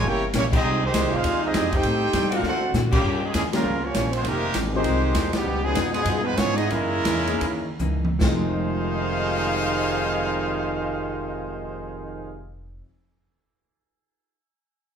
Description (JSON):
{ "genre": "jazz, big band swing", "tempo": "139-200 BPM", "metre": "4/4", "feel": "swing 62% on 8ths", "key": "F minor", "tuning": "A4 = 440 Hz", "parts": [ { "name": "clear trumpet section", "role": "melody", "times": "0.0-12.4 s", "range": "G3 to G5", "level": "-26 LUFS", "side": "right 1 dB", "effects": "none" }, { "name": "brilliant trombone section", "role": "second line", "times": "0.0-12.4 s", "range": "F2 to G4", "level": "-27 LUFS", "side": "right 2 dB", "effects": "none" }, { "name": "hollow-body jazz guitar", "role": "accompaniment", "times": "0.0-12.9 s", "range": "Gb2 to G4", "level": "-33 LUFS", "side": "left 3 dB", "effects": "none" }, { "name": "upright bass", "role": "bass", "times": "0.0-12.8 s", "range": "F1 to D3", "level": "-28 LUFS", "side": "equal", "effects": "none" }, { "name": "open jazz drum kit", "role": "drums", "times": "0.0-8.3 s", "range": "crash cymbal, hi-hat, kick drum, ride cymbal, snare drum, splash cymbal, toms", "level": "-27 LUFS", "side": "equal", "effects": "none" }, { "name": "bright saxophone section", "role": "sustained chords", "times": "0.5-3.3 s", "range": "D3 to G4", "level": "-30 LUFS", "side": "left 3 dB", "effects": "none" }, { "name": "warm grand piano", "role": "accompaniment", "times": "3.5-12.9 s", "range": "F2 to G5", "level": "-30 LUFS", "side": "left 3 dB", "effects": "none" } ], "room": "wet large studio reverb, RT60 0.9 s", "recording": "band playing live in one room", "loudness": "-21 LUFS", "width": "side -7 dB against mid", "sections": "0.0-3.0 A section; 3.0-8.2 B section; 8.2-11.7 C section", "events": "band accent 0.5, 2.9, 3.5, 5.3; drum fill 2.4-3.0, 7.8-8.2; slowing down 5.5-8.2", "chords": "0.0 C7b9; 0.6 Fm9; 1.8 Am7b5; 2.4 D7b13; 3.0 Gm7b5; 4.2 Fm9; 5.5 Db9; 6.7 Gb13; 8.2 Fm9", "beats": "0.04 0.34 | 0.64 0.94 1.24 1.54 | 1.84 2.15 2.45 2.75 | 3.05 3.35 3.65 3.95 | 4.25 4.55 4.85 5.15 | 5.45 5.76 6.06 6.38 | 6.71 7.05 7.41 7.80 | 8.21 8.64 9.07 9.50 | 9.93 10.36 10.79 11.22" }